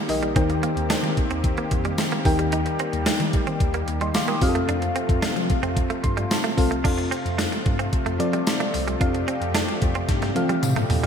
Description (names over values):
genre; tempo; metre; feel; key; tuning
1980s-style pop; 111 BPM; 4/4; straight; unclear; A4 = 444 Hz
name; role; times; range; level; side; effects
mellow FM electric piano; accompaniment; 0.0-11.1 s; Eb3 to Eb6; -26 LUFS; left 2 dB; chorus
lush unison pad; sustained chords; 0.0-11.1 s; C3 to G4; -30 LUFS; equal; chorus
direct-recorded clean electric guitar; riff; 0.0-11.1 s; G3 to Eb4; -30 LUFS; right 6 dB; analog chorus, ping-pong delay
mellow tine electric piano; bass; 0.1-11.1 s; Bb1 to F3; -28 LUFS; equal; medium stereo tremolo
gated 80s digital drum machine; drums; 0.1-11.1 s; crash cymbal, hi-hat, kick drum, snare drum, tambourine, toms; -24 LUFS; equal; gated reverb, gated reverb snare
tambourine; percussion; 0.9-10.8 s; none; -40 LUFS; left 7 dB; none
room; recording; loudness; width
light reverb, digital ambience; bright 1980s-style digital production; -20 LUFS; side -7 dB against mid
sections
0.0-6.8 A section; 6.8-11.1 B section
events
FM electric piano fill 5.8-6.8, 10.4-11.1; drum fill 10.1-11.1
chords
0.4 Cm7/Eb; 4.4 F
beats
| 0.36 0.90 1.44 1.98 | 2.52 3.06 3.60 4.14 | 4.68 5.23 5.77 6.31 | 6.85 7.39 7.93 8.47 | 9.01 9.55 10.09 10.63